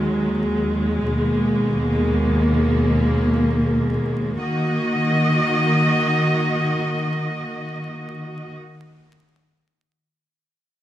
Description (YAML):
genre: hip hop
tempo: free time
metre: none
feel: none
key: Eb minor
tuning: A4 = 440 Hz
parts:
  - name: warm studio string section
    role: sustained chords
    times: 0.0-8.5 s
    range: D#2 to Eb5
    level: -18 LUFS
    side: equal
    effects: none
room: light reverb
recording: vinyl crackle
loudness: -18 LUFS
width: side -12 dB against mid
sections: 0.0-4.4 A section; 4.4-7.8 B section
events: none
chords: 0.0 B6/D# (rootless); 1.1 Abmadd9/Eb; 4.4 Ebm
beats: free time